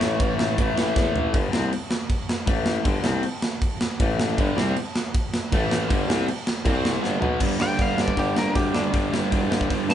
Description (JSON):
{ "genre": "punk rock", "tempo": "158 BPM", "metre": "4/4", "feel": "straight", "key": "unclear", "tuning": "A4 = 439 Hz", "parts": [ { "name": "lightly driven lead guitar", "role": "melody", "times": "0.0-0.9, 7.6-9.9 s", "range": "D4 to A5", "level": "-28 LUFS", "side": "equal", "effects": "none" }, { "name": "distorted electric guitar", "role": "riff", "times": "0.0-9.9 s", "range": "G2 to C4", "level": "-27 LUFS", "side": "left 5 dB", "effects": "distortion" }, { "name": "distorted electric guitar", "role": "riff", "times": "0.0-1.3, 4.4-9.9 s", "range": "G2 to C4", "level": "-27 LUFS", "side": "right 4 dB", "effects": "distortion" }, { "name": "clear tuba", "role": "bass", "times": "0.0-9.9 s", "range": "E1 to G2", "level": "-28 LUFS", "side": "equal", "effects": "none" }, { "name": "tight metal drum kit", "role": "drums", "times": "0.0-9.9 s", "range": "crash cymbal, hi-hat, kick drum, ride cymbal, snare drum, toms", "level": "-24 LUFS", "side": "right 1 dB", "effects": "none" } ], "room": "light reverb", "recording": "band playing live in one room, nothing above 10.4 kHz", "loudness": "-21 LUFS", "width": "side -10 dB against mid", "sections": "0.0-1.3 A section; 1.3-7.4 B section; 7.4-9.9 C section", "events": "drum fill 1.0-1.3, 7.0-7.4; lead electric guitar solo 7.4-9.9", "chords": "0.0 A; 1.3 G5; 2.5 A5; 2.9 G5; 4.0 A5; 4.4 G5; 5.5 A5; 5.9 G5; 6.6 C5; 7.0 G; 7.4 G5" }